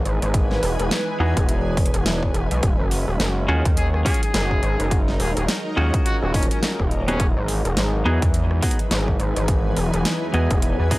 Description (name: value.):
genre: glitch hop.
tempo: 105 BPM.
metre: 4/4.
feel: swing 59% on 16ths.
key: unclear.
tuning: A4 = 440 Hz.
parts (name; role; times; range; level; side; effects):
warm analog pad; sustained chords; 0.0-11.0 s; E3 to G#4; -30 LUFS; equal; chorus, sidechain pumping.
gritty driven synth bass; bass; 0.0-11.0 s; Eb1 to E2; -22 LUFS; equal; distortion.
granular cloud pad; texture; 0.1-11.0 s; E3 to G#5; -30 LUFS; equal; built-in reverb, sidechain pumping.
dubstep drum kit; drums; 0.1-11.0 s; hi-hat, rim click, snare drum; -26 LUFS; equal; studio reverb.
electronic kick drum; drums; 0.3-11.0 s; none; -22 LUFS; equal; studio reverb.
semi-hollow electric guitar; stabs; 1.2-11.0 s; B3 to G#4; -26 LUFS; equal; vintage 12-bit sampler grit, sidechain pumping, tape echo.
clear trumpet; melody; 3.8-7.3 s; Db4 to Ab4; -29 LUFS; left 2 dB; tape echo.
room: little or no reverb.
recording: dry, gritty hardware recording.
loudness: -18 LUFS.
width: side -19 dB against mid.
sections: 0.0-11.0 A section.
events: none.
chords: 0.0 Emaj9; 2.6 Ebm11; 7.2 Emaj9.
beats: | 0.34 0.91 1.48 2.06 | 2.63 3.20 3.77 4.34 | 4.91 5.48 6.06 6.63 | 7.20 7.77 8.34 8.91 | 9.48 10.06 10.63.